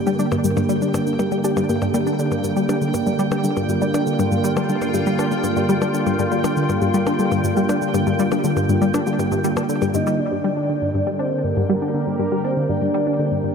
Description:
ambient, sequencer-driven space music; 120 BPM; 4/4; straight; G minor; A4 = 440 Hz
sweeping resonant pad; sustained chords; 0.0-13.5 s; D3 to Bb4; -22 LUFS; right 1 dB; chorus
bubbling stepped-filter texture; texture; 0.0-13.5 s; G5; -32 LUFS; right 3 dB; chorus, built-in reverb
soft round pluck; arpeggios; 0.1-10.0 s; G3 to G4; -25 LUFS; moving between left 9 dB and left 1 dB; chorus, auto-pan, tape echo
tight sequenced synth; riff; 0.1-13.5 s; G2 to D4; -22 LUFS; equal; chorus, tape echo
cabasa and percussion blips; percussion; 0.1-10.2 s; -31 LUFS; left 4 dB; overdrive, tape echo
soft octave-layered synth lead; melody; 9.9-13.5 s; Bb4 to Eb5; -23 LUFS; left 1 dB; chorus, tremolo, cassette tape, tape echo
wet huge ambient reverb, RT60 7.9 s; -18 LUFS; side -6 dB against mid
0.0-10.2 A section; 10.2-13.5 B section
fade-in on synth texture 0.0-10.2
0.0 Gm

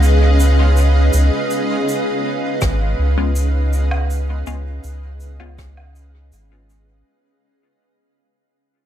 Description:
ambient dub; 81 BPM; 4/4; straight; Db mixolydian; A4 = 440 Hz
granular cloud pad; sustained chords; 0.0-7.1 s; Db4 to F5; -20 LUFS; right 1 dB; built-in reverb
warm sub bass; bass; 0.0-7.0 s; Ab1 to Db2; -15 LUFS; equal
shaker, rim click and woodblock; drums; 0.0-6.8 s; -30 LUFS; right 1 dB; dub echo
electronic kick drum; drums; 2.6-5.7 s; -22 LUFS; equal
filtered dub chord stab; stabs; 3.2-5.6 s; Ab3 to F4; -31 LUFS; left 4 dB
small room reverb; -14 LUFS; side -10 dB against mid
0.0-7.1 A section
fade-out 0.0-7.1
0.0 Db7

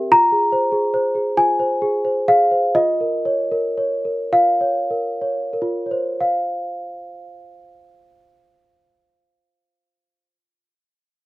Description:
classical, lullaby for celesta; 29-50 BPM (dotted quarters); 6/8; straight; F minor; A4 = 440 Hz
worn celesta; solo; 0.0-11.2 s; C4 to Bb5; -17 LUFS; equal
little or no reverb; close, detailed microphones; -17 LUFS; side -18 dB against mid
0.0-6.2 A section; 6.2-10.3 B section
slowing down 0.0-6.2
0.1 Fm; 2.8 Bbm/F; 6.2 F5

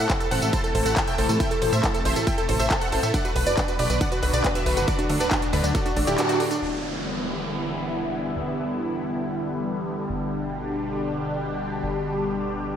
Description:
uplifting trance; 138 BPM; 4/4; straight; E minor; A4 = 444 Hz
supersaw stab; melody; 0.0-6.6 s; D4 to A5; -27 LUFS; right 1 dB; analog chorus, sidechain pumping, tape echo
wide unison pluck; second line; 0.0-6.6 s; D4 to A5; -32 LUFS; equal; cassette tape, sidechain pumping, tape echo
lush unison pad; sustained chords; 0.0-12.8 s; A2 to A4; -28 LUFS; left 1 dB; chorus, phaser, vintage 12-bit sampler grit, sidechain pumping
wide unison pluck; arpeggios; 0.0-6.6 s; D4 to A5; -30 LUFS; right 1 dB; sidechain pumping, tape echo
plucky analog bass; bass; 0.0-12.8 s; D1 to A2; -29 LUFS; equal; sidechain pumping
big-room dance drum kit; drums; 0.1-6.6 s; handclaps, hi-hat, ride cymbal, tambourine; -29 LUFS; equal
electronic kick drum; drums; 0.1-5.8 s; -26 LUFS; equal
downlifter; sound effects; 6.6-10.1 s; -35 LUFS; equal
wet lush hall reverb, RT60 1.6 s, digital ambience; dreamy mix soaked in reverb; -22 LUFS; side -9 dB against mid
0.0-6.6 A section; 6.6-12.8 B section
drop 0.0-6.6; band accent 6.2
0.0 Am; 3.1 Bm; 4.9 D; 6.6 Em7; 10.1 G

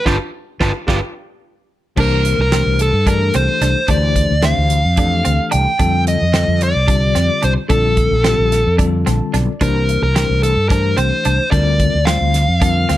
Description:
electric jazz fusion; 220 BPM (eighths); 7/8; straight; C mixolydian; A4 = 439 Hz
dark smooth lead guitar; melody; 0.0-13.0 s; F4 to G5; -18 LUFS; equal; overdrive, slapback echo, plate reverb
bell-like tine electric piano; accompaniment; 0.1-13.0 s; D3 to A5; -22 LUFS; left 4 dB; fast stereo tremolo, plate reverb
semi-hollow electric guitar; stabs; 0.1-13.0 s; C4 to G4; -25 LUFS; right 4 dB; ensemble chorus, plate reverb
fretless electric bass; bass; 0.1-13.0 s; G1 to G2; -16 LUFS; equal
damped 70s drum kit; drums; 0.1-13.0 s; crash cymbal, hi-hat, kick drum, snare drum; -19 LUFS; right 1 dB
light reverb; -13 LUFS; side -14 dB against mid
0.0-2.0 A section; 2.0-13.0 B section
band accent 0.1-2.0; drum fill 1.2-2.0; tine electric piano fill 8.8-9.6
0.1 G7(no3); 2.0 C9; 3.9 Fmaj13; 5.8 F13; 7.7 Bbmaj7; 9.6 C9; 11.5 Bb/D

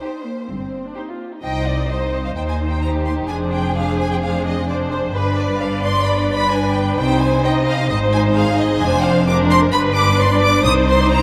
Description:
quick classical-period movement for string orchestra; 130 BPM; 4/4; straight; C minor; A4 = 442 Hz
rich studio violin section; melody; 0.0-11.2 s; B4 to Eb6; -24 LUFS; equal
rich studio violin section; second line; 0.0-11.2 s; G4 to Eb5; -26 LUFS; equal
rich studio viola section; accompaniment; 0.0-11.2 s; Bb3 to C5; -23 LUFS; equal
rich studio cello section; bass; 0.5-11.2 s; C2 to C3; -24 LUFS; equal
warm studio double bass section; bass; 0.5-11.2 s; F1 to Eb2; -25 LUFS; equal
wet cathedral reverb, RT60 5.6 s; in a vast, echoing space; -17 LUFS; mono
0.0-1.4 A section; 1.4-11.2 B section
0.0 Cm; 2.4 Cm/Eb; 3.3 Dm7b5/F; 5.1 G; 7.0 Cm; 7.9 Ab; 8.8 Fm6; 9.7 G; 10.6 Cm

